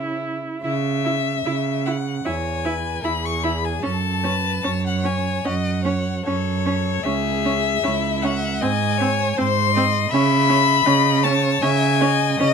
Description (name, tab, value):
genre	classical, slow romantic movement for string quartet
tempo	76 BPM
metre	4/4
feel	uneven beats, rubato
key	C# minor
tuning	A4 = 439 Hz
part	rich violin	melody	0.0-12.5 s	C#5 to C#6	-22 LUFS	left 10 dB	none
part	rich violin	second line	0.0-12.5 s	C#4 to E5	-27 LUFS	left 2 dB	none
part	rich viola	accompaniment	0.0-12.5 s	B#3 to E4	-25 LUFS	right 2 dB	none
part	rich cello	bass	0.0-12.5 s	C#2 to C#3	-22 LUFS	right 5 dB	none
room	light reverb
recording	close, detailed microphones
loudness	-18 LUFS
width	side -6 dB against mid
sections	0.6-12.5 A section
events	none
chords	0.0 C#m; 2.3 E; 3.8 F#m; 7.0 C#m; 8.6 G#; 10.1 C#m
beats	| 0.64 1.46 2.25 3.04 | 3.83 4.65 5.45 6.26 | 7.05 7.83 8.62 9.37 | 10.12 10.86 11.62 12.39